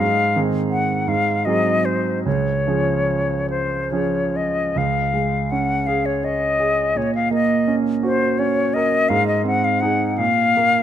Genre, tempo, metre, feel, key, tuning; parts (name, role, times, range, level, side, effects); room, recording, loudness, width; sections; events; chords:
classical, romantic duo for flute and grand piano; 47-57 BPM (dotted quarters); 6/8; rubato; Db major; A4 = 440 Hz
bright concert flute; melody; 0.0-10.8 s; C5 to Gb5; -20 LUFS; left 3 dB
clear concert grand piano; accompaniment; 0.0-10.8 s; Db2 to Db5; -20 LUFS; right 3 dB
moderate concert hall reverb, RT60 2.0 s; close, detailed microphones; -17 LUFS; side -10 dB against mid
0.0-4.8 A section; 4.8-10.8 A section
0.0 Ab; 1.1 Ab7; 2.3 Db; 7.0 Gb/Bb; 9.1 Ab; 10.2 Bb5